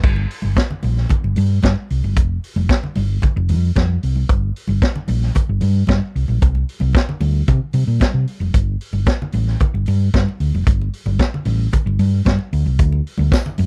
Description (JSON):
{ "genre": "disco", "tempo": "113 BPM", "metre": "4/4", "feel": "straight", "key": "G minor", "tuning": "A4 = 440 Hz", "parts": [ { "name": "hollow-body short-scale fingered electric bass", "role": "bass", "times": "0.0-13.7 s", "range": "F1 to C3", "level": "-19 LUFS", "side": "equal", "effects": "none" }, { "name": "vintage drum kit", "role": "drums", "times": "0.0-13.7 s", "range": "crash cymbal, hi-hat, kick drum, snare drum", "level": "-18 LUFS", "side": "equal", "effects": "none" }, { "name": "congas", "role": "percussion", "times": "0.2-13.7 s", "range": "none", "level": "-30 LUFS", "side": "equal", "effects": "none" }, { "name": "tambourine", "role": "percussion", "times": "13.3-13.5 s", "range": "none", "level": "-41 LUFS", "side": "equal", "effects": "none" } ], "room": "little or no reverb", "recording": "dry, close 1970s-style studio recording", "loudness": "-18 LUFS", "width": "mono", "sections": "0.0-8.5 A section; 8.5-13.7 B section", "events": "none", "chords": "none" }